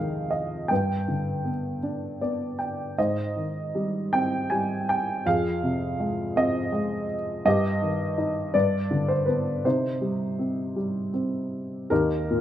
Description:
classical, lyrical solo piano; 54 BPM (dotted quarters); 6/8; rubato; C minor; A4 = 439 Hz
warm upright piano; solo; 0.0-12.4 s; Eb2 to Ab5; -24 LUFS; equal
moderate recital hall reverb, RT60 1.8 s; -24 LUFS; side -11 dB against mid
0.0-11.9 A section
upright piano fill 1.8-3.0
0.0 Fm7; 0.7 G; 3.0 Abmaj7; 5.3 Fm7; 7.5 Eb/G; 8.5 G; 9.6 Cm; 11.9 Eb

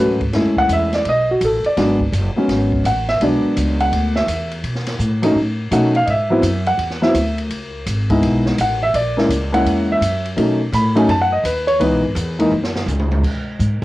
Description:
jazz piano trio; 168 BPM; 4/4; swing 65% on 8ths; A4 = 441 Hz
dark baby grand piano; melody; 0.0-12.5 s; E3 to B5; -16 LUFS; equal; cassette tape
upright bass; bass; 0.0-13.8 s; F#1 to B2; -21 LUFS; equal
open jazz drum kit; drums; 0.2-13.7 s; crash cymbal, hi-hat, kick drum, ride cymbal, snare drum, toms; -26 LUFS; equal; cassette tape
light reverb; home recording on cassette; -15 LUFS; side -17 dB against mid
0.0-13.2 A section
grand piano solo 0.0-13.2; drum fill 12.5-13.2
0.3 F#m7; 1.1 B7; 1.8 E7; 4.6 B7; 6.1 G#7(#5, no3); 7.5 C#m7; 8.9 F#7; 10.4 B7; 11.8 C#m7; 12.5 F#5; 13.2 N.C.

